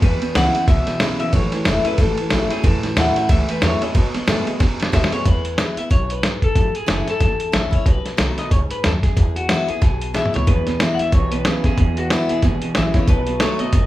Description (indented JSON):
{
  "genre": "rockabilly",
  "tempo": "184 BPM",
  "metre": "4/4",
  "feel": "swing 59% on 8ths",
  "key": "E major",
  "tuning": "A4 = 440 Hz",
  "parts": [
    { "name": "electric guitar through a small old amp", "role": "melody", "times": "0.0-13.9 s", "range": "F#4 to F#5", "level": "-25 LUFS", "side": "left 2 dB", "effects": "none" },
    { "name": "picked steel-string acoustic guitar", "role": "accompaniment", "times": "0.0-13.9 s", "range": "E2 to F#4", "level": "-25 LUFS", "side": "left 2 dB", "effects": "none" },
    { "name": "electric guitar through a small old amp", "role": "riff", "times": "0.0-5.2, 10.5-13.9 s", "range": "E2 to G#3", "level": "-24 LUFS", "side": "right 3 dB", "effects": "none" },
    { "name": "upright bass", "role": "bass", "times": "0.0-13.9 s", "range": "E1 to B2", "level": "-24 LUFS", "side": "equal", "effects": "none" },
    { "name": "lo-fi sampler-style drum kit", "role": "drums", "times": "0.0-13.8 s", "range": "hi-hat, kick drum, ride cymbal, snare drum, toms", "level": "-18 LUFS", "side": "equal", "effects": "none" }
  ],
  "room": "light reverb",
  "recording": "band playing live in one room",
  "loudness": "-16 LUFS",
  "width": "side -15 dB against mid",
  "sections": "0.0-5.3 A section; 5.3-13.9 B section",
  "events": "drum fill 4.6-5.3, 10.2-10.5",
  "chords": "0.0 E; 1.3 A; 3.9 B7; 5.3 E; 6.6 A; 7.9 B7; 9.2 E; 13.1 B7"
}